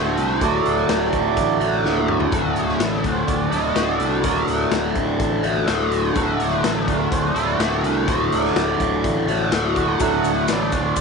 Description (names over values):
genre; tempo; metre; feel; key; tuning
psychedelic rock; 125 BPM; 4/4; straight; D major; A4 = 440 Hz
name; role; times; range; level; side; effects
hand-pumped harmonium; sustained chords; 0.0-11.0 s; F#3 to F#5; -25 LUFS; right 10 dB; none
cranked stack guitar; riff; 0.0-11.0 s; D2 to F#4; -20 LUFS; left 1 dB; overdrive, flanger
fuzz fingered electric bass; bass; 0.0-11.0 s; D1 to C2; -27 LUFS; left 1 dB; overdrive
raw garage drum kit; drums; 0.2-11.0 s; hi-hat, kick drum, snare drum, toms; -26 LUFS; left 4 dB; none
maracas; percussion; 10.0-11.0 s; none; -36 LUFS; left 15 dB; none
room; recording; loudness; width
light reverb, small room ambience; 1960s-style stereo with parts hard left and right, nothing above 10.3 kHz; -18 LUFS; side -4 dB against mid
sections
0.0-11.0 A section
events
harmonium solo 0.0-11.0; drum fill 1.8-2.3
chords
0.0 D